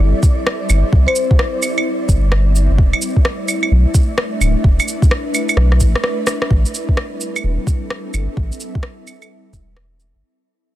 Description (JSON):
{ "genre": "future garage", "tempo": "129 BPM", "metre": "4/4", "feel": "swing 64% on 16ths", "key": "A minor", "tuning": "A4 = 436 Hz", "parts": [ { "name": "ethereal airy pad", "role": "sustained chords", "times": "0.0-10.2 s", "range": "G3 to E5", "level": "-23 LUFS", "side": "equal", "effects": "ensemble chorus, built-in reverb, sidechain pumping" }, { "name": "warm sub bass", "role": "bass", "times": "0.0-10.2 s", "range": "D1 to C2", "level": "-14 LUFS", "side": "equal", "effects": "sidechain pumping" }, { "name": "flickering grainy texture", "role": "texture", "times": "0.0-6.5 s", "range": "D5", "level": "-33 LUFS", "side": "right 3 dB", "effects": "built-in reverb" }, { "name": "electronic kick drum", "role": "drums", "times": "0.2-9.7 s", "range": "none", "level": "-13 LUFS", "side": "equal", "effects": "small room ambience" }, { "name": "electronic shaker, rim click and claves", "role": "drums", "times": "0.2-10.1 s", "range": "none", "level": "-21 LUFS", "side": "right 2 dB", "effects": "small room ambience, soft clipping on snare" }, { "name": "marimba with soft mallets", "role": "melody", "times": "1.1-1.3 s", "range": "C5", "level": "-23 LUFS", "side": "left 4 dB", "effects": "tape echo" } ], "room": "little or no reverb", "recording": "dense, heavily limited modern master", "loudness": "-14 LUFS", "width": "side -14 dB against mid", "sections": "0.0-6.5 A section; 6.5-10.2 B section", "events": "drum fill 5.6-6.5; fade-out 6.5-10.2", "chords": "0.0 C; 2.8 E7sus4; 6.5 Am7" }